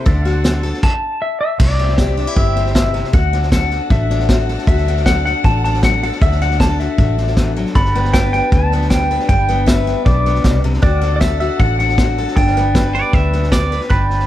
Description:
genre	honky-tonk and classic country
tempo	156 BPM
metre	4/4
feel	straight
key	G major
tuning	A4 = 440 Hz
part	pedal steel guitar	melody	0.0-13.5 s	D5 to C6	-20 LUFS	left 2 dB	analog delay
part	picked steel-string acoustic guitar	accompaniment	0.0-14.3 s	G2 to B4	-22 LUFS	left 4 dB	none
part	pedal steel guitar	sustained chords	0.0-0.8, 7.8-14.3 s	A4 to G5	-29 LUFS	right 2 dB	none
part	warm chamber violin section	sustained chords	0.0-13.9 s	G3 to F#5	-30 LUFS	left 2 dB	none
part	vintage muted fingered electric bass	bass	0.1-14.3 s	G1 to D2	-17 LUFS	equal	none
part	vintage drum kit	drums	0.1-14.2 s	crash cymbal, hi-hat, kick drum, snare drum	-17 LUFS	equal	none
part	twangy electric guitar	second line	12.9-14.3 s	B4 to E5	-20 LUFS	right 4 dB	tape echo
room	little or no reverb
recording	dark, warm production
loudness	-13 LUFS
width	side -13 dB against mid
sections	0.0-1.6 A section; 1.6-13.9 B section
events	pedal steel guitar solo 0.0-1.6; stop 0.8-1.6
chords	0.1 D; 1.6 C; 3.1 D; 7.7 G; 10.8 D; 12.4 G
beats	| 0.06 0.45 0.83 1.21 | 1.60 1.98 2.37 2.75 | 3.13 3.52 3.90 4.29 | 4.67 5.06 5.44 5.83 | 6.21 6.60 6.98 7.37 | 7.75 8.13 8.52 8.90 | 9.29 9.67 10.06 10.44 | 10.83 11.21 11.60 11.98 | 12.37 12.75 13.13 13.52 | 13.90

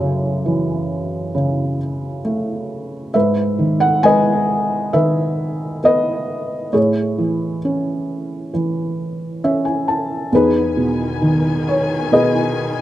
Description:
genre	acoustic folk-pop ballad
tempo	67 BPM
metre	4/4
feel	straight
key	E major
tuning	A4 = 440 Hz
part	felt-muted upright piano	melody	0.0-12.8 s	E2 to A5	-16 LUFS	equal	none
part	warm studio string section	sustained chords	10.3-12.8 s	D#3 to G#5	-24 LUFS	left 2 dB	none
room	light reverb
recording	recorded outdoors, with no room sound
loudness	-16 LUFS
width	side -13 dB against mid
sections	0.0-12.8 A section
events	felt piano fill 9.0-10.3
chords	0.0 B9sus4/F#; 3.1 Emaj7/G#; 6.7 Amaj7; 10.3 Emaj7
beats	0.46 1.36 2.25 | 3.15 4.04 4.93 5.83 | 6.73 7.62 8.52 9.42 | 10.32 11.22 12.12

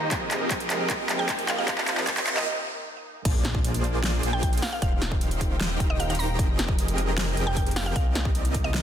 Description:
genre	future bass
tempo	153 BPM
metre	4/4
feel	half-time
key	unclear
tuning	A4 = 441 Hz
part	mallet-like synth pluck	melody	0.0-8.8 s	Eb5 to Bb5	-33 LUFS	equal	chorus, sidechain pumping, ping-pong delay
part	muted studio string section	sustained chords	0.0-8.8 s	F2 to G5	-38 LUFS	equal	sidechain pumping
part	supersaw chords	riff	0.0-8.8 s	Eb3 to Bb5	-30 LUFS	right 1 dB	sidechain pumping, low-pass filter, ping-pong delay
part	riser and impact	sound effects	0.1-4.8 s	none	-37 LUFS	equal	none
part	big-room dance drum kit	drums	0.1-8.8 s	crash cymbal, handclaps, hi-hat, snare drum	-29 LUFS	equal	overdrive, high-pass filter on snare, high-pass filter on hats, high-pass filter on cymbals
part	electronic kick drum	drums	0.1-8.6 s	none	-26 LUFS	equal	overdrive
part	wide detuned saw bass	bass	3.3-8.8 s	Eb1 to C2	-28 LUFS	equal	chorus, sidechain pumping
room	light reverb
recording	dense, heavily limited modern master, high-pass filter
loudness	-23 LUFS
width	side -9 dB against mid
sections	0.0-3.3 A section; 3.3-8.8 B section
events	build-up 0.0-3.3; drum fill 0.0-2.5; filter sweep on string section 0.0-3.3; riser 0.1-2.5; break 2.5-3.3; drop 3.3-8.8; impact 3.3-4.8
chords	0.1 Fm11; 1.7 Cm7; 3.3 Bb9; 4.6 Eb69; 6.4 Fm11; 8.0 Cm7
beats	| 0.12 0.51 0.90 1.29 | 1.68 2.08 2.47 2.86 | 3.25 3.64 4.04 4.43 | 4.82 5.21 5.61 6.00 | 6.39 6.78 7.17 7.57 | 7.96 8.35 8.74

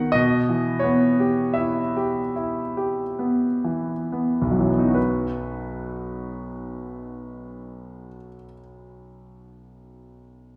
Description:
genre	classical, romantic nocturne for solo piano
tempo	21-30 BPM (dotted quarters)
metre	12/8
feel	rubato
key	B major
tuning	A4 = 440 Hz
part	clear concert grand piano	solo	0.0-10.6 s	B1 to F#5	-24 LUFS	equal	none
room	wet recital hall reverb, RT60 1.3 s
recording	heard from further back in the room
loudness	-23 LUFS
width	mono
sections	0.0-5.0 A section; 5.0-10.6 B section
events	slowing down 0.0-5.0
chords	0.1 Em/B; 5.0 B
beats	0.13 2.35 | 4.96 7.23 9.47

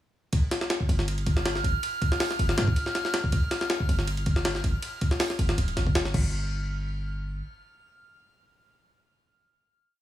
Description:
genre	drum and bass, jungle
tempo	160 BPM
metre	4/4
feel	swing 53% on 16ths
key	unclear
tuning	A4 = 441 Hz
part	jungle sampler-style drum kit	drums	0.3-6.2 s	crash cymbal, hi-hat, kick drum, ride cymbal, snare drum	-26 LUFS	equal	studio reverb
part	drifting glass-harmonics texture	texture	1.0-6.3 s	F6	-35 LUFS	right 2 dB	chorus, built-in reverb
part	warm 808-style bass	bass	0.9-7.4 s	D1 to G2	-27 LUFS	equal	tube saturation
room	little or no reverb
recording	small room ambience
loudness	-24 LUFS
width	side -13 dB against mid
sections	0.3-6.3 drop; 6.3-9.3 final hit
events	drop 0.3-6.3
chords	0.3 Fsus2/G; 3.3 Dmadd11 (rootless); 6.1 Fsus2/G; 6.3 N.C.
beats	| 0.33 0.70 1.08 1.45 | 1.83 2.20 2.58 2.95 | 3.33 3.70 4.08 4.45 | 4.83 5.20 5.58 5.95 | 6.33 6.70 7.08

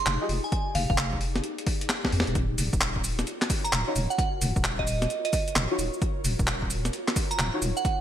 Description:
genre	UK garage, two-step garage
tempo	131 BPM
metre	4/4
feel	swing 65% on 16ths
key	unclear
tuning	A4 = 440 Hz
part	glassy synth bell	melody	0.0-7.9 s	Eb5 to C6	-31 LUFS	right 4 dB	chorus, phaser
part	ethereal airy pad	sustained chords	0.0-8.0 s	Eb4 to D5	-38 LUFS	left 1 dB	ensemble chorus, built-in reverb, vintage 12-bit sampler grit, sidechain pumping
part	deep soft wobble bass	bass	0.1-7.7 s	Eb1 to F2	-29 LUFS	equal	chorus
part	breakbeat sampler-style drum kit	drums	0.1-8.0 s	handclaps, hi-hat, shaker, snare drum	-29 LUFS	equal	gated reverb
part	deep mellow chord stab	stabs	0.2-0.3, 3.9-7.7 s	Eb4 to Eb5	-32 LUFS	left 1 dB	chorus, phaser, ping-pong delay
part	electronic kick drum	drums	0.5-8.0 s	none	-29 LUFS	equal	overdrive
room	light reverb, digital ambience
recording	bright 1980s-style digital production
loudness	-24 LUFS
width	side -10 dB against mid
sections	0.0-8.0 A section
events	drum fill 1.9-2.4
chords	0.0 Fm9; 2.4 Ebm9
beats	0.06 | 0.52 0.98 1.44 1.90 | 2.35 2.81 3.27 3.73 | 4.18 4.64 5.10 5.56 | 6.02 6.47 6.93 7.39 | 7.85

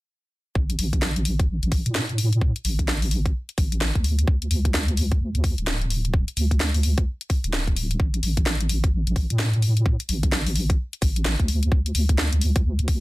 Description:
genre	UK garage, two-step garage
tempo	129 BPM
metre	4/4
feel	swing 62% on 16ths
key	unclear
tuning	A4 = 442 Hz
part	deep soft wobble bass	bass	0.6-13.0 s	D1 to A2	-22 LUFS	equal	chorus
part	electronic kick drum	drums	0.6-13.0 s	none	-22 LUFS	equal	none
part	garage drum kit	drums	0.7-13.0 s	hi-hat, snare drum	-27 LUFS	left 1 dB	none
room	little or no reverb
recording	dense, heavily limited modern master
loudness	-20 LUFS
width	side -20 dB against mid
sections	0.6-13.0 A section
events	none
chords	none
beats	| 0.56 1.02 1.49 1.95 | 2.42 2.88 3.35 3.81 | 4.28 4.74 5.21 5.67 | 6.14 6.60 7.07 7.53 | 8.00 8.46 8.93 9.39 | 9.86 10.32 10.79 11.25 | 11.72 12.18 12.65

